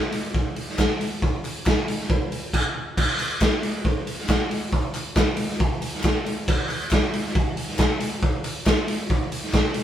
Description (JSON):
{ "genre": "rock", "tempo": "137 BPM", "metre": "4/4", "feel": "straight", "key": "none", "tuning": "none", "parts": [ { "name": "raw garage drum kit", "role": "drums", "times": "0.1-9.8 s", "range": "crash cymbal, hi-hat, kick drum, snare drum", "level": "-21 LUFS", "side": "equal", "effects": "none" }, { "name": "group handclap", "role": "percussion", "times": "0.8-9.6 s", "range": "none", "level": "-36 LUFS", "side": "left 3 dB", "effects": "none" } ], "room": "light reverb", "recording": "band playing live in one room", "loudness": "-21 LUFS", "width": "side -10 dB against mid", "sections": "0.0-3.0 A section; 3.0-9.8 A section", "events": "none", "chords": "none", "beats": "0.34 0.78 | 1.21 1.65 2.09 2.53 | 2.96 3.40 3.84 4.28 | 4.72 5.16 5.59 6.03 | 6.47 6.91 7.35 7.79 | 8.22 8.66 9.10 9.53" }